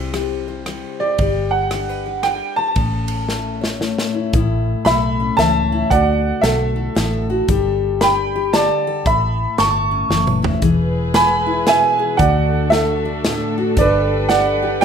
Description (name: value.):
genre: honky-tonk and classic country.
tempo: 114 BPM.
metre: 3/4.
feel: swing 61% on 8ths.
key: unclear.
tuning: A4 = 444 Hz.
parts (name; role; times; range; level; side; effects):
bright upright piano; melody; 0.0-14.8 s; A4 to C#6; -17 LUFS; right 3 dB; slapback echo.
picked steel-string acoustic guitar; accompaniment; 0.0-14.8 s; A2 to C#5; -22 LUFS; left 5 dB; none.
vintage muted fingered electric bass; bass; 0.0-14.8 s; E1 to D2; -22 LUFS; equal; none.
natural country drum kit; drums; 0.1-14.8 s; hi-hat, kick drum, ride cymbal, rim click, snare drum, toms; -22 LUFS; equal; none.
warm chamber string section; sustained chords; 10.6-14.8 s; D3 to B4; -25 LUFS; equal; none.
room: light reverb.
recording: none.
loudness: -15 LUFS.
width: side -7 dB against mid.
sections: 0.0-4.3 A section; 4.3-14.8 B section.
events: drum fill 3.3-4.3, 10.1-10.6.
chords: 0.0 C; 1.2 G; 2.8 A; 5.9 Dadd9; 7.5 Gadd9; 9.1 Aadd9; 10.6 E; 12.2 D; 13.8 Gadd9.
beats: 0.13 0.66 | 1.19 1.71 2.24 | 2.76 3.29 3.81 | 4.34 4.87 5.39 | 5.91 6.44 6.96 | 7.49 8.01 8.53 | 9.06 9.58 10.11 | 10.63 11.15 11.68 | 12.20 12.72 13.25 | 13.77 14.29 14.82.